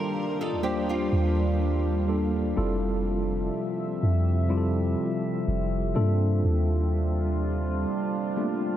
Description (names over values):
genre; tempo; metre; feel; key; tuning
contemporary R&B; 62 BPM; 4/4; swing 54% on 16ths; unclear; A4 = 441 Hz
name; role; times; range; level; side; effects
mellow tine electric piano; accompaniment; 0.0-8.8 s; G3 to C5; -29 LUFS; equal; medium stereo tremolo
deep dark ambient pad; sustained chords; 0.0-8.8 s; C3 to E5; -30 LUFS; equal; chorus, built-in reverb
flamenco guitar; arpeggios; 0.0-2.3 s; C4 to Bb4; -36 LUFS; right 2 dB; ensemble chorus, tape echo
soft 808-style bass; bass; 0.0-7.9 s; F1 to Eb3; -26 LUFS; equal; none
room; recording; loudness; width
moderate huge ambient reverb, RT60 7.6 s; dreamy mix soaked in reverb; -24 LUFS; side -11 dB against mid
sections
0.0-8.8 A section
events
tine electric piano fill 8.4-8.8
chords
0.0 Ebmaj9#11; 2.6 Fmaj7; 6.0 Ebmaj9#11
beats
0.63 1.60 | 2.57 3.53 4.50 5.47 | 6.44 7.41 8.37